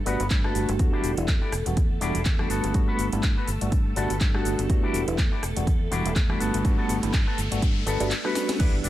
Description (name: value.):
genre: filtered disco house.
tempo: 123 BPM.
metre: 4/4.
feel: swing 56% on 16ths.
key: G major.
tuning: A4 = 440 Hz.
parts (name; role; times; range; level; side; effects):
phased string machine; sustained chords; 0.0-8.9 s; A3 to E5; -36 LUFS; right 1 dB; ensemble chorus, phaser, sidechain pumping, low-pass filter.
tine electric piano; accompaniment; 0.1-8.9 s; E3 to F#5; -29 LUFS; equal; fast stereo tremolo, phaser, sidechain pumping, low-pass filter.
electric guitar with an envelope filter; riff; 0.1-8.9 s; B3 to D5; -32 LUFS; left 3 dB; sidechain pumping, low-pass filter.
fingered electric bass; bass; 0.1-8.9 s; E1 to G2; -29 LUFS; equal; sidechain pumping, low-pass filter.
house drum kit; drums; 0.1-8.9 s; crash cymbal, handclaps, hi-hat, rim click, shaker, snare drum; -32 LUFS; equal; sidechain pumping on hats, studio ambience, sidechain pumping on perc, sidechain pumping on cymbals.
electronic kick drum; drums; 0.3-8.7 s; none; -23 LUFS; equal; studio ambience.
riser and impact; sound effects; 6.4-8.9 s; none; -36 LUFS; equal; none.
room: little or no reverb.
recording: none.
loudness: -22 LUFS.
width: side -14 dB against mid.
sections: 0.0-8.6 A section.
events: riser 6.4-8.6; drum fill 8.4; impact 8.6.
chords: 0.0 Gmaj9; 0.8 Em7; 2.5 Gmaj9; 4.7 Em7; 6.4 Gmaj9.